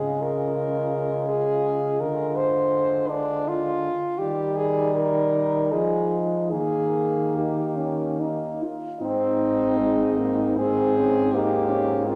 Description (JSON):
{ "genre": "classical, lyrical piece for horn quartet", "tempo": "70-83 BPM", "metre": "3/4", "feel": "rubato", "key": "Ab major", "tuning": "A4 = 440 Hz", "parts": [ { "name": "clear French horn", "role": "melody", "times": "0.0-12.2 s", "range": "D4 to C5", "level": "-27 LUFS", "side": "equal", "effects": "none" }, { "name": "mellow French horn", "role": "second line", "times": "0.0-12.2 s", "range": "Ab3 to F4", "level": "-32 LUFS", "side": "equal", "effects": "none" }, { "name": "warm French horn", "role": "accompaniment", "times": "0.0-12.2 s", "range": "G3 to C4", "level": "-30 LUFS", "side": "equal", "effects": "none" }, { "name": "dark French horn", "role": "bass", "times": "0.0-12.2 s", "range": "Ab2 to F3", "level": "-30 LUFS", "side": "equal", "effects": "none" } ], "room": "moderate concert hall reverb, RT60 1.9 s", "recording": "none", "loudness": "-24 LUFS", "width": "mono", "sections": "0.0-9.0 A section; 9.0-12.2 B section", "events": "none", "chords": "0.0 Bbm7/Db; 2.0 Dm7b5; 4.2 Eb; 5.7 Fm7; 6.5 Eb; 9.0 Ab; 11.3 Bb5/Ab" }